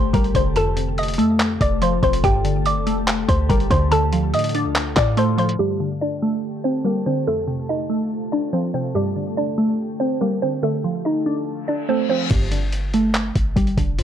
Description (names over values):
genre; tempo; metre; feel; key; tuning
hip hop, trap; 143 BPM; 4/4; half-time; unclear; A4 = 440 Hz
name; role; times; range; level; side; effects
mallet-like synth pluck; melody; 0.0-12.3 s; G3 to Eb6; -22 LUFS; equal; chorus, phaser
glassy wavetable pluck; accompaniment; 0.0-14.0 s; F2 to D4; -23 LUFS; equal; chorus, low-pass filter
glassy FM pad; sustained chords; 0.0-12.3 s; C3 to A4; -29 LUFS; left 2 dB; ensemble chorus, built-in reverb
warm 808-style bass; bass; 0.0-5.6, 12.3-14.0 s; F1 to A2; -22 LUFS; equal; none
boom bap sampler-style drum kit; drums; 0.1-5.6, 12.3-14.0 s; crash cymbal, handclaps, hi-hat, kick drum; -22 LUFS; equal; none
reverse cymbal; sound effects; 11.7-12.3 s; none; -30 LUFS; left 6 dB; none
room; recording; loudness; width
light reverb; dry, gritty hardware recording, low-pass filter; -18 LUFS; side -9 dB against mid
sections
0.0-5.6 A section; 5.6-12.3 B section; 12.3-14.0 C section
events
filter sweep 5.6-12.3; reverse cymbal 11.7-12.3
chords
0.0 Gsus2; 0.6 F; 2.2 Gsus2; 3.9 Dm; 5.6 Gsus2; 7.3 F; 9.0 Gsus2; 10.6 Dm; 12.3 Gsus2